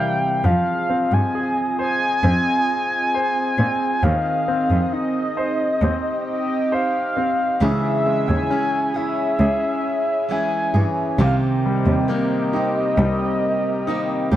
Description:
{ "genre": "pop ballad", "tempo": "67 BPM", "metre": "4/4", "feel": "straight", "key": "unclear", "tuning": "A4 = 440 Hz", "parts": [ { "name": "mellow horn-like synth lead", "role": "melody", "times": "0.0-14.3 s", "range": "Eb5 to Ab5", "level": "-22 LUFS", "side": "equal", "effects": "chorus" }, { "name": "clear concert grand piano", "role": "accompaniment", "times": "0.0-14.4 s", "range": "E2 to F5", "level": "-25 LUFS", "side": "left 2 dB", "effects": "none" }, { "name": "lush unison pad", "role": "sustained chords", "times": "0.0-14.4 s", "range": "E3 to Fb5", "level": "-27 LUFS", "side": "right 1 dB", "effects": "chorus" }, { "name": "warm cello", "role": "bass", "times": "0.4-14.4 s", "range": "C2 to Bb2", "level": "-19 LUFS", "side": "equal", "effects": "none" }, { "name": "picked steel-string acoustic guitar", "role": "arpeggios", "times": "7.6-14.4 s", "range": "C3 to Ab4", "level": "-26 LUFS", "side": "right 5 dB", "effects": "none" } ], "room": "light reverb, studio reverb", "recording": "dark, warm production", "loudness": "-18 LUFS", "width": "side -12 dB against mid", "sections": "0.5-14.4 A section", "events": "grand piano fill 0.0-0.5", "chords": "0.5 Fm7; 4.0 Ab/Eb; 7.6 Dbm; 11.2 Cm7" }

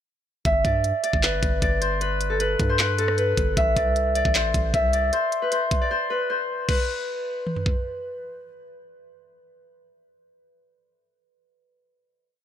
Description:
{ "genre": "hip hop, trap", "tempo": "154 BPM", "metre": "4/4", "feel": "half-time", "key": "G major", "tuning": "A4 = 441 Hz", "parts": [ { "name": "Celtic harp", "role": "melody", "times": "0.5-8.7 s", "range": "A4 to E5", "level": "-23 LUFS", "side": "left 1 dB", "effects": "ping-pong delay" }, { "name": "long sustained 808-style bass", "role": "bass", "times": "0.5-5.1 s", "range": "G1 to G2", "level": "-26 LUFS", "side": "equal", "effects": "none" }, { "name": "trap drum kit", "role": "drums", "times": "0.5-7.8 s", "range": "crash cymbal, handclaps, hi-hat, kick drum, rim click, toms", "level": "-24 LUFS", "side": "equal", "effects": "none" } ], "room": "light reverb", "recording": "none", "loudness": "-21 LUFS", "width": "side -10 dB against mid", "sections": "0.5-6.7 hook; 6.7-9.8 final note", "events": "break 5.9-6.7", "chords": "0.5 G; 3.6 Am; 5.1 N.C." }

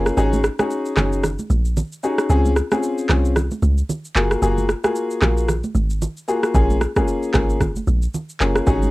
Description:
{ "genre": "afrobeats", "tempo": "113 BPM", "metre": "4/4", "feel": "swing 58% on 16ths", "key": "unclear", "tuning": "A4 = 440 Hz", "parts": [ { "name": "warm concert grand piano", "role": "accompaniment", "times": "0.0-8.9 s", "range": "Bb3 to Ab4", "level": "-21 LUFS", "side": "left 2 dB", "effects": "cassette tape" }, { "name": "deep log drum bass", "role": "bass", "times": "0.0-8.9 s", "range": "Gb1 to Db2", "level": "-19 LUFS", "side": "equal", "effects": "none" }, { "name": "afro-pop drum kit", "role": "drums", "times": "0.1-8.9 s", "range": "handclaps, kick drum, rim click, shaker", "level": "-22 LUFS", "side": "right 1 dB", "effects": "overdrive, cassette tape" }, { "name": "congas", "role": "percussion", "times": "0.3-8.9 s", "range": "none", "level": "-26 LUFS", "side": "right 3 dB", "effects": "none" } ], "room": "little or no reverb", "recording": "home recording on cassette", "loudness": "-17 LUFS", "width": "side -19 dB against mid", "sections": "0.0-8.9 A section", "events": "break 0.0-6.5", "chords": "0.2 Ab7sus4; 2.3 Dbmaj7; 4.2 Gbmaj9; 6.5 Bbm7" }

